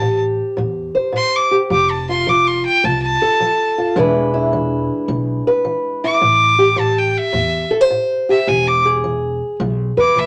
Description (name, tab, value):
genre	acoustic country blues, solo or duo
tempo	106 BPM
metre	4/4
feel	swing 66% on 8ths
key	A minor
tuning	A4 = 440 Hz
part	clear fiddle	melody	0.0-10.3 s	E5 to D6	-18 LUFS	equal	none
part	fingerpicked old ladder-braced acoustic guitar	accompaniment	0.0-10.3 s	A2 to C5	-20 LUFS	equal	none
part	upright bass	bass	0.0-10.3 s	E1 to E2	-25 LUFS	equal	none
room	moderate club reverb, RT60 0.6 s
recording	none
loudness	-16 LUFS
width	mono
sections	0.0-10.3 A section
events	fiddle solo 0.0-10.3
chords	0.0 Am7; 1.7 F; 4.0 E7; 6.2 Am7; 8.5 E7